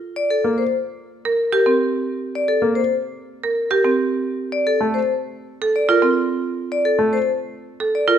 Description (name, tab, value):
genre	classical, minimalist pattern music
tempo	110 BPM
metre	4/4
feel	straight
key	unclear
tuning	A4 = 438 Hz
part	vibraphone with medium hard mallets	melody	0.2-8.2 s	A4 to D5	-20 LUFS	left 3 dB	none
part	clear grand piano	accompaniment	0.4-7.2 s	A3 to Bb3	-24 LUFS	right 2 dB	none
part	marimba with hard mallets	arpeggios	1.3-8.2 s	C4 to Bb4	-20 LUFS	right 4 dB	none
room	moderate recital hall reverb, RT60 1.6 s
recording	none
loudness	-18 LUFS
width	side -9 dB against mid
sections	0.0-8.2 A section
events	none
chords	0.3 Bbsus2; 4.7 N.C.